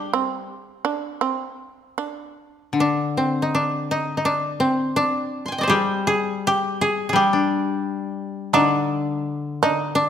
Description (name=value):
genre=japanese traditional, Japanese chamber music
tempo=78-86 BPM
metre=4/4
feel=rubato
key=G miyako bushi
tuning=A4 = 441 Hz
part: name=koto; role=melody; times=0.0-10.1 s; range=C4 to C6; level=-21 LUFS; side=equal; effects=none
part: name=shamisen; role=second line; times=0.0-2.7, 8.5-10.1 s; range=C4 to Eb4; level=-24 LUFS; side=right 7 dB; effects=none
part: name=koto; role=accompaniment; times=0.0-10.1 s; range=D3 to D4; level=-24 LUFS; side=left 4 dB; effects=none
room=moderate scoring stage reverb, RT60 1.5 s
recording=none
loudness=-20 LUFS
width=side -9 dB against mid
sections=0.0-2.7 A section; 2.7-10.1 B section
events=none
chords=none